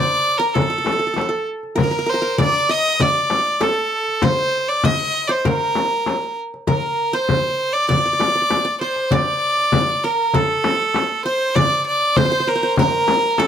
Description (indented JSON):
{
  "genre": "Arabic maqam ensemble",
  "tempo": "98 BPM",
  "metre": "4/4",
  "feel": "straight",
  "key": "D maqam hijaz",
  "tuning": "A4 = 439 Hz",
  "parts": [
    { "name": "bright violin", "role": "melody", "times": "0.0-13.5 s", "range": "A4 to Eb5+28c", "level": "-18 LUFS", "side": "right 1 dB", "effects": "none" },
    { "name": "qanun", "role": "second line", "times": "0.0-13.5 s", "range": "A4 to Eb5+25c", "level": "-24 LUFS", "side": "equal", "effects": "none" },
    { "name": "darbuka", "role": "percussion", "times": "0.6-13.5 s", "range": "none", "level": "-22 LUFS", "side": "left 1 dB", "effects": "none" },
    { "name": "frame drum", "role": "percussion", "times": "0.6-13.5 s", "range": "none", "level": "-23 LUFS", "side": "left 5 dB", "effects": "none" }
  ],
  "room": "moderate small room reverb, RT60 0.5 s",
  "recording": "none",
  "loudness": "-16 LUFS",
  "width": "side -9 dB against mid",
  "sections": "0.0-9.1 A section; 9.1-13.5 B section",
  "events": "none",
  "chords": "none",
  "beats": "0.55 1.17 | 1.78 2.39 3.00 3.61 | 4.23 4.84 5.45 6.06 | 6.67 7.29 7.90 8.51 | 9.12 9.73 10.34 10.95 | 11.55 12.16 12.77 13.38"
}